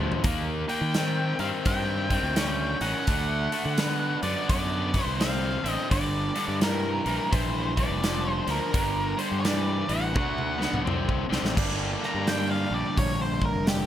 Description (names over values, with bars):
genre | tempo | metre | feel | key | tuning
blues rock power trio and southern rock | 85 BPM | 4/4 | swing 63% on 8ths | G minor | A4 = 440 Hz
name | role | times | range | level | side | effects
raw garage guitar | riff | 0.0-13.9 s | G2 to G4 | -29 LUFS | equal | overdrive
fuzz fingered electric bass | bass | 0.0-13.9 s | F1 to Eb3 | -30 LUFS | equal | overdrive
big rock drum kit | drums | 0.1-13.9 s | crash cymbal, hi-hat, kick drum, snare drum, toms | -29 LUFS | equal | none
octave-fuzz lead guitar | melody | 0.7-13.9 s | G4 to Bb5 | -30 LUFS | equal | distortion
room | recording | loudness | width
little or no reverb | none | -24 LUFS | side -11 dB against mid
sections
0.0-11.6 A section; 11.6-13.9 B section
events
drum fill 0.0, 10.2-11.6; lead electric guitar solo 11.6-13.9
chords
0.2 Ebmaj7; 3.1 D7#9; 5.9 Gm; 10.2 D7; 11.6 Gm